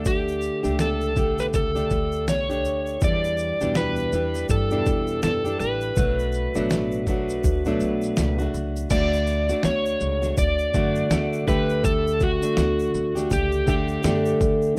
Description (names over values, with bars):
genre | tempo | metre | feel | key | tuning
acoustic pop | 82 BPM | 4/4 | swing 60% on 16ths | unclear | A4 = 440 Hz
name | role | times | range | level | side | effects
overdriven slide guitar | melody | 0.0-14.4 s | F#4 to D5 | -28 LUFS | equal | digital delay
fingerpicked plugged-in steel-string acoustic guitar | accompaniment | 0.0-14.8 s | E2 to G4 | -28 LUFS | equal | none
upright bass | bass | 0.0-14.7 s | A1 to G2 | -31 LUFS | equal | none
tube shaker | percussion | 0.0-14.8 s | none | -48 LUFS | equal | none
dusty soul sampler-style drum kit | drums | 0.1-14.6 s | crash cymbal, kick drum, shaker, snare drum | -28 LUFS | equal | overdrive
room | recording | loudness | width
little or no reverb | rough home demo mix | -23 LUFS | mono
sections
0.0-8.9 A section; 8.9-14.8 B section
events
none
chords
0.0 Gsus2; 3.0 Em7; 6.0 Bm7; 8.9 D; 11.5 Gsus2/D